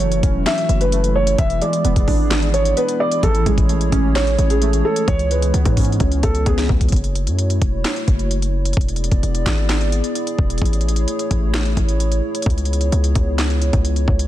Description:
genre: hip hop, trap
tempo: 130 BPM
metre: 4/4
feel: half-time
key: F# minor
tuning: A4 = 441 Hz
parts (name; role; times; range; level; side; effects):
- felt-muted upright piano; melody; 0.0-6.7 s; G#4 to E5; -21 LUFS; equal; low-pass filter, ping-pong delay
- warbly lo-fi synth keys; accompaniment; 0.0-6.9 s; E3 to D4; -23 LUFS; right 3 dB; chorus, low-pass filter
- dark analog pad; sustained chords; 0.0-14.3 s; A3 to D5; -26 LUFS; equal; chorus
- hard-hitting 808-style bass; bass; 0.0-14.3 s; E1 to G#2; -18 LUFS; equal; none
- trap drum kit; drums; 0.0-14.3 s; handclaps, hi-hat, kick drum, snare drum; -20 LUFS; equal; vintage 12-bit sampler grit
room: little or no reverb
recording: dense, heavily limited modern master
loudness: -15 LUFS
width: side -13 dB against mid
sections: 0.0-6.9 A section; 6.9-14.3 B section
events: drum fill 6.0-6.9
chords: 0.0 F#m7; 1.4 E7; 3.2 Amaj7; 5.1 C#m7; 6.9 F#m7; 8.8 E7; 10.6 Amaj7; 12.5 C#m7

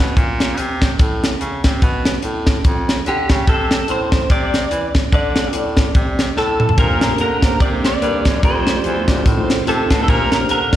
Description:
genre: uptempo gospel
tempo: 145 BPM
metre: 4/4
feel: swing 57% on 8ths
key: unclear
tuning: A4 = 440 Hz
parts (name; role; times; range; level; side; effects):
- clear baritone saxophone; bass; 0.0-10.8 s; D2 to E3; -22 LUFS; equal; none
- tight funk drum kit; drums; 0.2-10.8 s; hi-hat, kick drum, snare drum, toms; -16 LUFS; equal; none
- clean electric guitar; melody; 3.1-10.8 s; G4 to D5; -20 LUFS; equal; ensemble chorus, slapback echo
- mellow tine electric piano; accompaniment; 6.8-10.8 s; A2 to D5; -22 LUFS; equal; medium stereo tremolo
- bright tonewheel organ; sustained chords; 6.8-10.8 s; D3 to Bb4; -26 LUFS; right 4 dB; fast rotary speaker, overdrive, chorus vibrato
room: light reverb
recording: live gig heard through the venue's PA, recital hall reverb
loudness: -14 LUFS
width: side -12 dB against mid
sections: 0.0-10.8 A section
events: drum fill 6.4-6.8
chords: 0.2 Bbsus2; 1.8 G9; 3.5 Am; 4.3 Cadd9; 5.1 D5; 6.8 Bb69; 8.4 F69; 9.3 F7/A; 10.1 Bb69

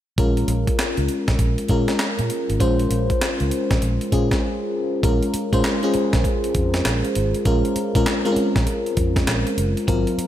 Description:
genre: R&B, new jack swing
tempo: 99 BPM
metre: 4/4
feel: swing 63% on 16ths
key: Bb minor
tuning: A4 = 438 Hz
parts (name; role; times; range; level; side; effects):
- FM electric piano; accompaniment; 0.2-10.3 s; Gb3 to C5; -21 LUFS; left 1 dB; chorus
- vintage muted fingered electric bass; bass; 0.2-10.2 s; Gb1 to Bb2; -23 LUFS; equal; none
- breakbeat sampler-style drum kit; drums; 0.2-10.3 s; handclaps, hi-hat, kick drum, snare drum; -23 LUFS; equal; gated reverb
room: light reverb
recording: none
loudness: -18 LUFS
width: side -12 dB against mid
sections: 0.2-5.0 A section; 5.0-10.3 B section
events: break 4.4-5.0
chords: 0.2 Bbm7

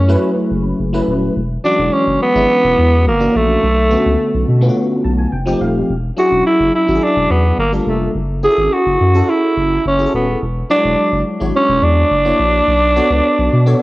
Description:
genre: polished 1980s jazz-funk pop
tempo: 106 BPM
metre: 4/4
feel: straight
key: unclear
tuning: A4 = 441 Hz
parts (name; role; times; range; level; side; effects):
- growling alto saxophone; melody; 0.0-13.8 s; A3 to G#4; -14 LUFS; right 1 dB; cassette tape
- FM electric piano; accompaniment; 0.0-13.8 s; D3 to A5; -18 LUFS; left 1 dB; ensemble chorus, cassette tape
- saturated sub bass; bass; 0.0-13.7 s; D#1 to B2; -16 LUFS; equal; none
room: moderate spring reverb, RT60 2.2 s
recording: home recording on cassette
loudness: -12 LUFS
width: side -19 dB against mid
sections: 0.0-13.8 A section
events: FM electric piano fill 4.8-5.9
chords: 0.0 F#m9; 1.4 E13; 3.1 F#7b13; 3.6 Bm9; 5.3 F9; 5.9 E13; 7.6 Gm9; 8.2 F#m9; 10.4 E13; 12.1 F#7b13; 12.7 Bm9

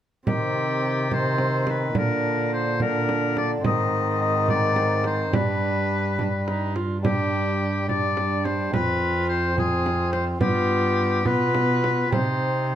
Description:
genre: classical, renaissance-style consort dance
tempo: 71 BPM (dotted quarters)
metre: 6/8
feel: straight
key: C harmonic minor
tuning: A4 = 440 Hz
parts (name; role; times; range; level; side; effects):
- clear oboe; melody; 0.3-12.8 s; G4 to Eb5; -26 LUFS; left 4 dB; none
- warm viola; second line; 0.3-12.8 s; C4 to F4; -29 LUFS; right 4 dB; none
- warm bassoon; accompaniment; 0.3-12.8 s; D3 to C4; -27 LUFS; left 1 dB; none
- warm cello; bass; 0.3-12.8 s; F2 to C3; -27 LUFS; right 1 dB; none
- frame drum; percussion; 0.3-12.4 s; none; -28 LUFS; right 3 dB; none
room: moderate stone room reverb, RT60 1.1 s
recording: none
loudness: -21 LUFS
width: side -10 dB against mid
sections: 0.3-12.8 A section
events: none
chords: 0.3 Cm; 2.0 Bb; 3.7 Ab; 5.3 G; 8.7 Fm; 10.4 G7; 12.1 Cm

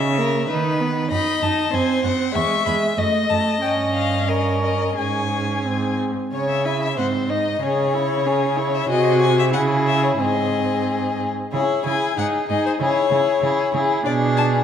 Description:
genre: quick classical-period movement for string quartet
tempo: 84-98 BPM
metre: 2/4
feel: rubato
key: C# minor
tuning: A4 = 439 Hz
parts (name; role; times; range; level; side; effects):
- rich violin; melody; 0.0-14.5 s; B#4 to C#6; -24 LUFS; left 8 dB; none
- rich viola; accompaniment; 0.0-14.6 s; G#3 to F#4; -23 LUFS; right 1 dB; none
- rich cello; bass; 0.0-14.6 s; E2 to D#3; -24 LUFS; right 4 dB; none
- clear violin; second line; 0.2-14.6 s; G#4 to E5; -23 LUFS; left 2 dB; none
room: moderate scoring stage reverb, RT60 2.0 s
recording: none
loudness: -18 LUFS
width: side -8 dB against mid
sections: 0.0-6.3 A section; 6.3-14.6 B section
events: none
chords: 0.5 B/D#; 1.1 D#dim/F#; 1.7 G#7; 2.4 C#m/E; 3.0 D#dim; 3.6 D#7/G; 5.0 C#5/G#; 5.7 G#; 6.3 C#m; 7.0 G#; 7.6 C#m; 8.9 G#7/B#; 9.5 C#m; 10.2 G#; 11.5 C#m; 12.2 G#5; 12.8 C#m; 14.1 G#dim/B

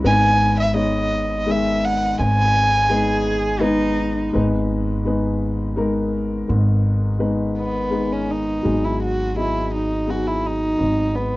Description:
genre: acoustic folk-pop ballad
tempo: 84 BPM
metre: 3/4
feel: straight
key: G# minor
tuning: A4 = 440 Hz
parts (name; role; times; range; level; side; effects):
- warm upright piano; accompaniment; 0.0-11.4 s; G#1 to D#5; -21 LUFS; left 2 dB; none
- upright bass; bass; 0.0-11.4 s; G#1; -24 LUFS; equal; none
- dark violin; melody; 0.1-3.6, 7.6-11.4 s; B3 to G#5; -20 LUFS; right 1 dB; none
- warm cello; second line; 2.9-4.3 s; D#4 to G#4; -24 LUFS; right 2 dB; none
room: light reverb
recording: worn, warbling old tape, cassette tape, warbly pitch drift, nothing above 7.6 kHz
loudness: -18 LUFS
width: side -18 dB against mid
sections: 0.0-4.3 A section; 4.3-8.6 B section; 8.6-11.4 C section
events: none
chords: 0.0 G#m; 8.6 G#m7

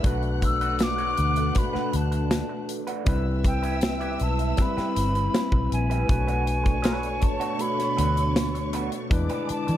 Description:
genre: lush 1970s-style soul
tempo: 79 BPM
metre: 4/4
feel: straight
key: unclear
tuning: A4 = 440 Hz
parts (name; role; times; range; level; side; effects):
- dark studio string section; second line; 0.0-9.8 s; C#5 to F#6; -37 LUFS; equal; none
- overdriven tine electric piano; accompaniment; 0.0-9.8 s; G3 to B4; -31 LUFS; left 3 dB; none
- phased string machine; sustained chords; 0.0-9.8 s; B2 to B4; -34 LUFS; right 1 dB; ensemble chorus, phaser
- electric guitar through a small old amp; riff; 0.0-9.7 s; A3 to D5; -36 LUFS; right 5 dB; wah
- vintage muted fingered electric bass; bass; 0.0-9.8 s; G1 to E3; -27 LUFS; equal; none
- modern studio drum kit; drums; 0.0-9.8 s; hi-hat, kick drum, snare drum; -26 LUFS; equal; none
- hollow concert flute; melody; 0.5-9.8 s; G5 to E6; -29 LUFS; equal; none
room: small room reverb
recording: none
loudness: -22 LUFS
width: side -12 dB against mid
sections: 0.0-6.1 A section; 6.1-9.8 B section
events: none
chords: 0.0 Bm7; 3.1 Cmaj7; 6.1 Bm7; 9.1 E7

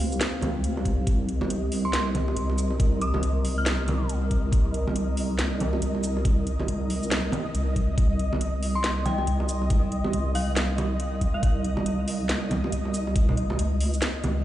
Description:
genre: deep dubstep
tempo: 139 BPM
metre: 4/4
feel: swing 60% on 16ths, half-time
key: C phrygian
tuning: A4 = 441 Hz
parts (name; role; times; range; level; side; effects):
- dark analog pad; sustained chords; 0.0-14.4 s; C4 to F5; -34 LUFS; equal; chorus
- deep soft wobble bass; bass; 0.0-14.4 s; C2 to Db2; -26 LUFS; equal; chorus
- garage drum kit; drums; 0.1-14.3 s; hi-hat, shaker, snare drum; -31 LUFS; equal; none
- bongos and congas; percussion; 0.4-14.3 s; none; -34 LUFS; right 3 dB; dub echo
- electronic kick drum; drums; 0.9-13.3 s; none; -22 LUFS; equal; none
- flickering grainy texture; texture; 1.4-14.4 s; Eb5; -36 LUFS; left 1 dB; built-in reverb
- dark detuned synth bell; melody; 1.9-4.0, 8.8-11.9 s; F5 to F6; -35 LUFS; left 1 dB; chorus, phaser, dub echo
room: little or no reverb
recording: played on a big sound system in a bare room, large studio reverb, nothing above 10.8 kHz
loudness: -23 LUFS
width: side -13 dB against mid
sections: 0.0-14.4 A section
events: none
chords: 0.0 Cm

